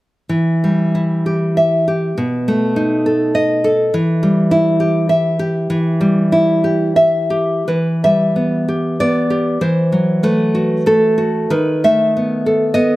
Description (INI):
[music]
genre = romantic piece for solo classical guitar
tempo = 81-106 BPM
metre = 3/4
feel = rubato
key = E minor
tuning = A4 = 440 Hz
[part]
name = nylon-string guitar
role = solo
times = 0.3-13.0 s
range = B2 to E5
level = -13 LUFS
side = equal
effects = none
[sound]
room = moderate recital hall reverb, RT60 1.5 s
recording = none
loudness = -13 LUFS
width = side -17 dB against mid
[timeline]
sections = 0.3-7.7 A section; 7.7-13.0 B section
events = none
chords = 0.3 Em; 2.2 B7; 3.9 Em; 9.6 F#m7b5/E; 11.5 B7/D#